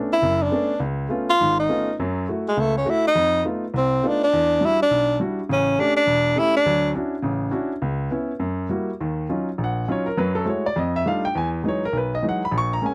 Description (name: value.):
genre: jazz.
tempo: 205 BPM.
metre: 4/4.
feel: swing 60% on 8ths.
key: Eb minor from 9.0 s.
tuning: A4 = 440 Hz.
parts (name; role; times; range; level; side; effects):
warm baby grand piano; accompaniment; 0.0-12.9 s; E1 to Db6; -25 LUFS; equal; none.
breathy tenor saxophone; melody; 0.1-6.9 s; G#3 to E#4; -21 LUFS; equal; none.
room: little or no reverb.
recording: dry, gritty hardware recording.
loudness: -22 LUFS.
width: mono.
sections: 0.0-9.0 A section; 9.0-12.9 B section.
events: none.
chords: 0.0 Bm9; 0.8 C#7b13; 2.0 F#m7; 3.2 F7#11; 4.3 Em9; 5.5 A7; 6.7 Dmaj9; 7.8 C#m7; 8.4 F#7b9; 9.0 Ebm9; 10.2 Gbm9; 10.8 F13; 11.3 Emaj9.